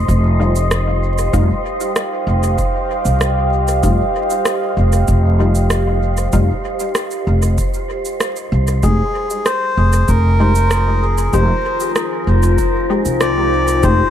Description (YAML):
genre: ambient dub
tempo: 96 BPM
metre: 4/4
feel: straight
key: unclear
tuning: A4 = 440 Hz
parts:
  - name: deep dark ambient pad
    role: sustained chords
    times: 0.0-14.1 s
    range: Eb4 to Ab5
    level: -21 LUFS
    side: left 1 dB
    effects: chorus, built-in reverb
  - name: upright bass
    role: bass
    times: 0.0-14.0 s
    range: F1 to C2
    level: -15 LUFS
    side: equal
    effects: none
  - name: wind-like tuned noise texture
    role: texture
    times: 0.0-14.1 s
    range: Bb4 to C5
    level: -26 LUFS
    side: right 4 dB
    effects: built-in reverb
  - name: electronic cabasa and rim click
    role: drums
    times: 0.1-14.0 s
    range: none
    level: -23 LUFS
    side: right 1 dB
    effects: studio reverb, dub echo
  - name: electronic kick drum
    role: drums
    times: 0.1-14.0 s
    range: none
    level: -21 LUFS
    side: equal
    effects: studio reverb
  - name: filtered dub chord stab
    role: stabs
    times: 0.4-14.0 s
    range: G3 to G4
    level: -25 LUFS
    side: left 4 dB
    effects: analog chorus, dub echo
  - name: melodica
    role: melody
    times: 8.8-14.1 s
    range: Ab4 to D5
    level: -18 LUFS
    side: left 1 dB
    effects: dub echo
room: light reverb, digital ambience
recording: vinyl crackle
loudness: -13 LUFS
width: side -10 dB against mid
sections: 0.0-14.1 A section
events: none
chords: 0.0 Ebadd9/F; 8.8 Fm7